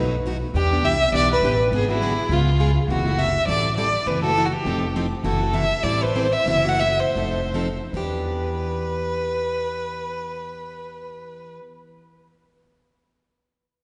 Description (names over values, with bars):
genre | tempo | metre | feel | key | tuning
acoustic string swing (jazz manouche) | 142-205 BPM | 4/4 | swing 57% on 8ths | E minor | A4 = 440 Hz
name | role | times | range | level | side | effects
warm violin | melody | 0.0-11.5 s | E4 to F#5 | -25 LUFS | equal | none
picked plugged-in steel-string acoustic guitar | accompaniment | 0.0-11.6 s | B2 to A4 | -30 LUFS | equal | none
upright bass | bass | 0.0-11.5 s | F1 to E2 | -27 LUFS | equal | none
room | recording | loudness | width
wet church reverb, RT60 2.8 s | recorded in a church or concert hall, nothing above 10.7 kHz | -22 LUFS | mono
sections
0.0-2.9 A section; 2.9-7.9 B section; 7.9-11.3 C section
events
slowing down 5.2-7.9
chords
0.0 B7; 0.5 Em7; 1.7 G#m7b5; 2.3 C#7; 2.9 F#m7b5; 3.5 Am7; 4.1 F#m7b5; 4.7 F7; 5.2 F#m7b5; 5.8 Am7; 6.5 F#m7b5; 7.2 F7; 7.9 Em7